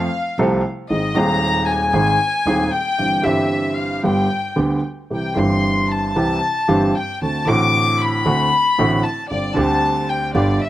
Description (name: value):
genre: tango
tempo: 114 BPM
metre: 4/4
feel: rubato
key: unclear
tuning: A4 = 440 Hz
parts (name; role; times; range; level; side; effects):
- warm chamber violin section; second line; 0.0-10.7 s; D5 to D6; -20 LUFS; left 3 dB; none
- warm baby grand piano; accompaniment; 0.0-10.6 s; Eb1 to A4; -18 LUFS; right 1 dB; none
- upright bass; bass; 0.0-10.6 s; G1 to Eb2; -27 LUFS; right 1 dB; none
room: little or no reverb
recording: recorded outdoors, with no room sound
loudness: -16 LUFS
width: side -14 dB against mid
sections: 0.0-10.7 A section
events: violin section solo 0.0-10.7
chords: 0.0 F; 0.9 Ab; 3.0 C/G; 4.0 G; 5.1 C; 7.2 D7; 9.3 Gsus4